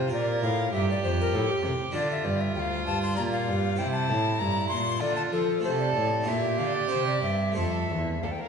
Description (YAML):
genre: classical, baroque-style sonata movement with continuo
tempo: 97 BPM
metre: 3/4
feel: uneven beats, rubato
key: unclear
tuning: A4 = 440 Hz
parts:
  - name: tenor recorder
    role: melody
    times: 0.0-8.5 s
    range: G4 to C6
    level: -30 LUFS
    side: left 5 dB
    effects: none
  - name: rich violin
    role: second line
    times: 0.0-8.5 s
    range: E4 to Bb4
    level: -31 LUFS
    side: right 5 dB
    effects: none
  - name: harpsichord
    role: accompaniment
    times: 0.0-8.5 s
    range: D2 to C5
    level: -33 LUFS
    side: left 1 dB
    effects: none
  - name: warm cello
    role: bass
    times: 0.0-8.3 s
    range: D2 to F3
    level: -29 LUFS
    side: right 2 dB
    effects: none
room: wet recital hall reverb, RT60 1.4 s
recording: heard from further back in the room, nothing above 11.0 kHz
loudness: -24 LUFS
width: side -6 dB against mid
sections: 0.0-8.5 A section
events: none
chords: 0.1 Bb5; 1.9 Dm; 3.2 Gm/Bb; 3.8 C7; 5.0 Dm; 5.6 Am/C; 6.3 Bb; 6.9 C; 7.6 F